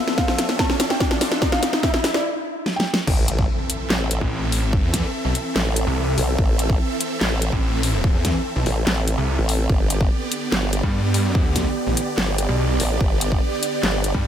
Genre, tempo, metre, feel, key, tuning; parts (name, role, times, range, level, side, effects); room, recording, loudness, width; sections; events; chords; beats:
heavy wobble dubstep; 145 BPM; 4/4; half-time; A minor; A4 = 444 Hz
supersaw chords; sustained chords; 0.0-14.3 s; D3 to E5; -29 LUFS; right 1 dB; phaser, sidechain pumping
riser and impact; sound effects; 0.0-4.7 s; -28 LUFS; left 1 dB
warbly tape-like pad; texture; 0.0-14.3 s; B3 to E5; -29 LUFS; right 2 dB; chorus, built-in reverb, sidechain pumping
dubstep drum kit; drums; 0.1-14.1 s; crash cymbal, handclaps, hi-hat, snare drum; -23 LUFS; equal
felt-muted upright piano; melody; 0.2-2.9 s; D5 to A5; -29 LUFS; right 1 dB; tape echo
electronic kick drum; drums; 0.2-14.2 s; -21 LUFS; equal
formant-sweep wobble bass; bass; 3.1-14.1 s; G1 to B1; -22 LUFS; equal; chorus, overdrive
snarling distorted saw bass; bass; 4.2-14.3 s; A1 to G2; -22 LUFS; equal; distortion, overdrive
light reverb; -18 LUFS; side -9 dB against mid
0.0-3.1 A section; 3.1-14.3 B section
build-up 0.0-3.1; drum fill 0.0-2.2, 2.7-3.1; riser 0.0-2.2; break 2.2-3.1; drop 3.1-14.3; impact 3.1-4.7
0.0 Dmadd9; 3.1 Am; 9.7 G
0.18 0.59 1.00 | 1.42 1.83 2.25 2.66 | 3.07 3.49 3.90 4.32 | 4.73 5.14 5.56 5.97 | 6.38 6.80 7.21 7.63 | 8.04 8.45 8.87 9.28 | 9.70 10.11 10.52 10.94 | 11.35 11.76 12.18 12.59 | 13.01 13.42 13.83 14.25